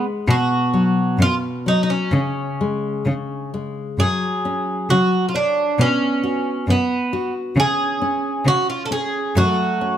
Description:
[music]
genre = fado-style ballad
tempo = 67 BPM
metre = 2/4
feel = rubato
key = F# harmonic minor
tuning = A4 = 440 Hz
[part]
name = Irish bouzouki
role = melody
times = 0.0-10.0 s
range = B3 to A4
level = -21 LUFS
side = right 2 dB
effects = none
[part]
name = nylon-string guitar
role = accompaniment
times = 0.0-10.0 s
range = B2 to C#5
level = -22 LUFS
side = left 2 dB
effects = none
[part]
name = bright cello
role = bass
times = 0.3-9.4 s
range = F#2 to C#3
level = -19 LUFS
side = equal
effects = none
[part]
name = picked plugged-in twelve-string acoustic guitar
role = second line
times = 9.4-10.0 s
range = A3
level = -25 LUFS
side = right 1 dB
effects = slapback echo
[sound]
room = moderate recital hall reverb, RT60 1.7 s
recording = close, detailed microphones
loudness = -17 LUFS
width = side -10 dB against mid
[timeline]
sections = 0.0-10.0 A section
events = none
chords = 0.3 B5; 2.1 C#5; 4.0 F#sus2; 5.8 B5; 7.6 C#5; 9.4 F#m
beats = | 0.29 1.19 | 2.12 3.06 | 3.99 4.90 | 5.79 6.68 | 7.57 8.46 | 9.36

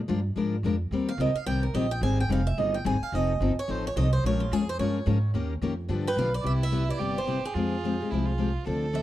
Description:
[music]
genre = acoustic string swing (jazz manouche)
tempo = 217 BPM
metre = 4/4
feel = swing 57% on 8ths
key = unclear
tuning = A4 = 440 Hz
[part]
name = upright bass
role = bass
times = 0.0-9.0 s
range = F1 to Ab2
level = -28 LUFS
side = right 1 dB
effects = none
[part]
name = picked steel-string acoustic guitar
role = accompaniment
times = 0.1-9.0 s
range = C3 to Bb4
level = -29 LUFS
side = left 4 dB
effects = none
[part]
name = picked swing-style acoustic guitar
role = melody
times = 1.1-9.0 s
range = F4 to Ab5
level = -31 LUFS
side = right 3 dB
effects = none
[part]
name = rich violin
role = second line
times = 6.4-9.0 s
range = E4 to A4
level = -35 LUFS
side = right 5 dB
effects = none
[sound]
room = small room ambience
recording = dry, close 1970s-style studio recording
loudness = -24 LUFS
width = side -14 dB against mid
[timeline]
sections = 0.0-6.5 A section; 6.5-9.0 B section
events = steel-string acoustic guitar solo 0.0-6.5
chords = 0.0 Bb7; 0.9 Eb6; 2.0 Abmaj7; 3.1 F7; 4.2 Bbm7; 5.3 Eb7; 5.9 G7; 6.5 Cmaj7; 7.6 Fmadd9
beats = 0.08 0.36 0.64 | 0.91 1.19 1.47 1.75 | 2.02 2.30 2.58 2.85 | 3.13 3.41 3.69 3.96 | 4.24 4.51 4.79 5.07 | 5.34 5.62 5.90 6.17 | 6.45 6.73 7.00 7.28 | 7.56 7.83 8.11 8.39 | 8.66 8.94

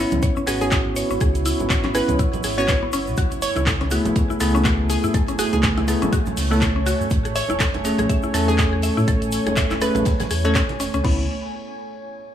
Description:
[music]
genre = deep house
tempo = 122 BPM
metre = 4/4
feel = swing 57% on 16ths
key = C# minor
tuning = A4 = 440 Hz
[part]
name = deep dark ambient pad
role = sustained chords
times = 0.0-11.3 s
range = A3 to G#5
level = -28 LUFS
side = right 1 dB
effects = chorus, built-in reverb, sidechain pumping
[part]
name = mallet-like synth pluck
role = arpeggios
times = 0.0-11.3 s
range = B3 to E5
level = -29 LUFS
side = left 3 dB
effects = chorus, sidechain pumping, digital delay
[part]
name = bell-like tine electric piano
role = stabs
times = 0.0-11.2 s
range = A3 to A4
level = -24 LUFS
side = equal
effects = sidechain pumping, digital delay
[part]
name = sub bass with octave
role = bass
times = 0.0-11.3 s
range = E1 to A2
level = -25 LUFS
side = equal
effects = sidechain pumping
[part]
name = deep house drum kit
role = drums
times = 0.1-11.2 s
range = crash cymbal, handclaps, hi-hat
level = -28 LUFS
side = equal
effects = none
[part]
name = congas and bongos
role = percussion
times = 0.1-10.8 s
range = none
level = -30 LUFS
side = right 4 dB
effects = none
[part]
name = egg shaker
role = percussion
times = 0.1-11.0 s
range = none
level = -38 LUFS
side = right 3 dB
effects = none
[part]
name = electronic kick drum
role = drums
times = 0.2-11.2 s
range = none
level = -21 LUFS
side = equal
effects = none
[part]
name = tight funk drum kit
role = drums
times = 0.2-11.0 s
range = hi-hat, snare drum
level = -36 LUFS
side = right 3 dB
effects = none
[part]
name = hollow square pluck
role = melody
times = 0.6-10.8 s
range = G#4 to C#5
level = -28 LUFS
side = right 2 dB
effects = chorus, digital delay
[sound]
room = light reverb, studio ambience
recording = small room reverb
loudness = -18 LUFS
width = side -10 dB against mid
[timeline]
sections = 0.0-11.0 A section; 11.0-12.3 B section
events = drop 0.0-11.0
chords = 0.0 C#m7; 2.9 F#m11; 7.1 Amaj7; 11.0 C#m7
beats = 0.23 0.72 | 1.21 1.70 2.19 2.68 | 3.18 3.67 4.16 4.65 | 5.14 5.63 6.13 6.62 | 7.11 7.60 8.09 8.59 | 9.08 9.57 10.06 10.55 | 11.04

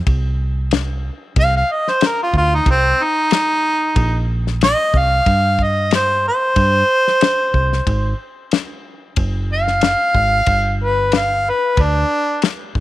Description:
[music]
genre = straight-eighth soul blues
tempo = 92 BPM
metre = 4/4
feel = straight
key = C minor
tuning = A4 = 440 Hz
[part]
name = fingered electric bass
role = bass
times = 0.1-12.8 s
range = F#1 to G2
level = -18 LUFS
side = right 1 dB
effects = none
[part]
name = damped 70s drum kit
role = drums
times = 0.1-12.8 s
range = kick drum, ride cymbal, snare drum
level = -19 LUFS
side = left 3 dB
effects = none
[part]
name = warm harmonica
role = melody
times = 1.4-12.4 s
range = C4 to F5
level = -16 LUFS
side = equal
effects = overdrive
[sound]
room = light reverb, studio reverb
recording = 1960s-style stereo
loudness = -14 LUFS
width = side -15 dB against mid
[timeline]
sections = 0.0-12.8 A section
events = harmonica solo 0.0-12.8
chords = 0.0 F5; 2.7 Cm7; 7.9 F#sus2; 10.5 G5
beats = | 0.06 0.71 1.36 2.01 | 2.66 3.31 3.96 4.61 | 5.26 5.92 6.57 7.22 | 7.87 8.52 9.17 9.82 | 10.47 11.12 11.78 12.43

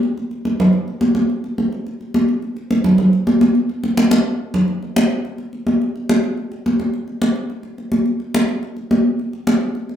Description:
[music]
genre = jazz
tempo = 213 BPM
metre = 4/4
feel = straight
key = none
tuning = none
[part]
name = congas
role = percussion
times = 0.0-10.0 s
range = none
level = -16 LUFS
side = equal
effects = none
[sound]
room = wet studio reverb, RT60 0.6 s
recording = band playing live in one room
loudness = -16 LUFS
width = side -9 dB against mid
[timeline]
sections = 0.0-4.7 A section; 4.7-10.0 B section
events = drum fill 4.0-4.7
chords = none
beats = | 0.17 0.45 0.73 1.01 | 1.29 1.58 1.86 2.14 | 2.42 2.70 2.98 3.26 | 3.54 3.83 4.11 4.39 | 4.67 4.95 5.24 5.52 | 5.80 6.08 6.36 6.64 | 6.93 7.21 7.49 7.77 | 8.06 8.34 8.62 8.90 | 9.18 9.47 9.75

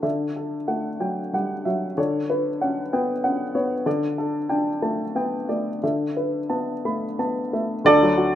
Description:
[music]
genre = neoclassical minimalist piano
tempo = 58-64 BPM (dotted quarters)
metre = 6/8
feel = rubato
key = D major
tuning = A4 = 444 Hz
[part]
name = warm upright piano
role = solo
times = 0.0-8.3 s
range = D2 to B5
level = -21 LUFS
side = equal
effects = none
[sound]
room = small room ambience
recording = rough home demo mix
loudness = -21 LUFS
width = side -11 dB against mid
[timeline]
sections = 0.0-7.9 A section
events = none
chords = 0.0 Dadd9; 2.0 Bmadd9/D; 3.9 Gsus2/D; 5.8 Asus2/D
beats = | 0.04 1.01 | 1.98 2.92 | 3.86 4.82 | 5.82 6.85 | 7.86

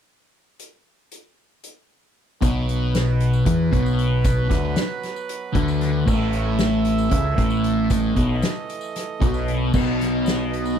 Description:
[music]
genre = psychedelic rock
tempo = 229 BPM (eighths)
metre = 7/8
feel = straight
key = B mixolydian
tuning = A4 = 440 Hz
[part]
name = soft-mallet drum kit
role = drums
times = 0.6-10.7 s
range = crash cymbal, hi-hat, kick drum, snare drum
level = -24 LUFS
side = equal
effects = none
[part]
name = clear brass ensemble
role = sustained chords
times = 2.4-10.8 s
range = E3 to E5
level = -30 LUFS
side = right 6 dB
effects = none
[part]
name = thick fuzz guitar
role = riff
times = 2.4-10.8 s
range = A2 to E3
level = -21 LUFS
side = left 1 dB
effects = distortion, phaser
[part]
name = growling picked electric bass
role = bass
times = 2.4-10.8 s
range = A1 to E2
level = -24 LUFS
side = equal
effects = overdrive
[part]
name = tambourine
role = percussion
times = 2.4-10.8 s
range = none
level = -43 LUFS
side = left 12 dB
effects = none
[sound]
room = little or no reverb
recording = none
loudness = -19 LUFS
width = side -8 dB against mid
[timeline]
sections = 0.6-2.4 A section; 2.4-10.8 B section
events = none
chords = 0.6 N.C.; 2.4 B5; 6.1 A5; 9.7 B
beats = | 0.59 0.85 1.11 1.37 1.63 1.89 2.15 | 2.42 2.68 2.94 3.20 3.46 3.72 3.98 | 4.24 4.50 4.77 5.03 5.29 5.55 5.81 | 6.07 6.34 6.60 6.86 7.12 7.38 7.65 | 7.91 8.17 8.43 8.70 8.96 9.22 9.48 | 9.75 10.01 10.27 10.53

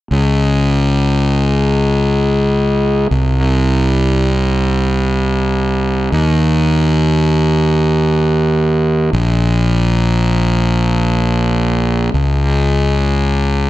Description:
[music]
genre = post-rock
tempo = free time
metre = none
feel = none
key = unclear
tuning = A4 = 440 Hz
[part]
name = fuzz fingered electric bass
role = solo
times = 0.1-13.7 s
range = Bb1 to Eb2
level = -12 LUFS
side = equal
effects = overdrive
[sound]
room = light reverb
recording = none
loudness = -12 LUFS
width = side -16 dB against mid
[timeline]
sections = 0.1-13.7 A section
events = none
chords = none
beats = free time

